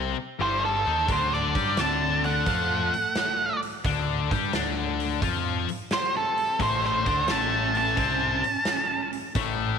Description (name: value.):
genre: blues rock power trio and southern rock.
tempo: 87 BPM.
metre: 4/4.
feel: swing 68% on 8ths.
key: unclear.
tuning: A4 = 440 Hz.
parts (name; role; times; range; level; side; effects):
sludgy distorted guitar; riff; 0.0-9.8 s; G2 to G4; -28 LUFS; left 10 dB; overdrive.
fuzz picked electric bass; bass; 0.0-9.8 s; G1 to G2; -31 LUFS; right 1 dB; overdrive.
octave-fuzz lead guitar; melody; 0.4-9.1 s; A4 to A5; -26 LUFS; right 1 dB; distortion, tape echo.
lead guitar through a small cranked amp; second line; 0.4-9.1 s; C3 to C#4; -35 LUFS; right 11 dB; overdrive.
big rock drum kit; drums; 1.1-9.6 s; hi-hat, kick drum, snare drum; -31 LUFS; equal; none.
room: moderate echo chamber reverb, RT60 1.7 s, small room ambience.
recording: 1960s-style stereo with parts hard left and right.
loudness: -23 LUFS.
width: side -7 dB against mid.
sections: 0.0-9.8 A section.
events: none.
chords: 0.0 A7; 1.1 D; 6.6 A.